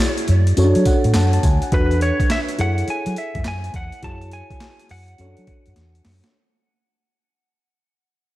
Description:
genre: R&B, new jack swing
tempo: 104 BPM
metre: 4/4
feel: swing 65% on 16ths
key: unclear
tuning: A4 = 440 Hz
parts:
  - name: mellow FM electric piano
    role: accompaniment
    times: 0.0-6.4 s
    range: C#4 to A5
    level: -22 LUFS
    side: equal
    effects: chorus
  - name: boom bap sampler-style drum kit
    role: drums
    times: 0.2-6.3 s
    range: handclaps, hi-hat, kick drum, snare drum, tambourine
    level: -21 LUFS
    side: equal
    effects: overdrive
  - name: vintage muted fingered electric bass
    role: bass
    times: 0.3-6.2 s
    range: D2 to F#3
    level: -18 LUFS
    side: equal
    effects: none
  - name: direct-recorded clean electric guitar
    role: melody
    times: 1.7-5.7 s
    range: B4 to A5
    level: -28 LUFS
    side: equal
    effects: diffuse ambient delay
room: moderate lush hall reverb, RT60 2.0 s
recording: dreamy mix soaked in reverb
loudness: -16 LUFS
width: side -16 dB against mid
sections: 0.0-6.3 A section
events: fade-out 0.0-6.3; FM electric piano fill 0.6-1.7; drum fill 5.8-6.3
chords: 0.0 E69; 0.6 Dmaj7#11; 1.7 E9sus4; 2.6 F#m9; 5.2 E13sus4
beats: 0.57 1.15 | 1.72 2.30 2.88 3.46 | 4.03 4.61 5.18 5.76

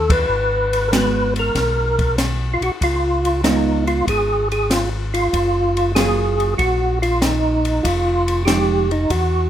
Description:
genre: soul jazz organ trio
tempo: 95 BPM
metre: 4/4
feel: swing 69% on 8ths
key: unclear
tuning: A4 = 440 Hz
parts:
  - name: percussive tonewheel organ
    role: melody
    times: 0.0-9.5 s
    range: Eb4 to B4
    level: -19 LUFS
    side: equal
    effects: slow rotary speaker, chorus vibrato, plate reverb
  - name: mellow tonewheel organ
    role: bass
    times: 0.0-9.5 s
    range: F1 to E2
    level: -22 LUFS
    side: equal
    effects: slow rotary speaker
  - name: open jazz drum kit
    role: drums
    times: 0.1-9.3 s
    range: hi-hat, kick drum, ride cymbal, snare drum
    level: -23 LUFS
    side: left 1 dB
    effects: none
  - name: vintage hollow-body jazz guitar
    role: accompaniment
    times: 0.9-8.9 s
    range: F3 to Ab4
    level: -22 LUFS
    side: right 3 dB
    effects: none
room: light reverb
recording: none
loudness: -16 LUFS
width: side -10 dB against mid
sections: 0.0-9.5 A section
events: band accent 0.0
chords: 0.3 Abm9; 2.8 Db7; 5.3 Gbmaj9; 7.8 Fm9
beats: | 0.29 0.93 1.55 2.18 | 2.81 3.44 4.07 4.70 | 5.33 5.96 6.59 7.22 | 7.84 8.47 9.11

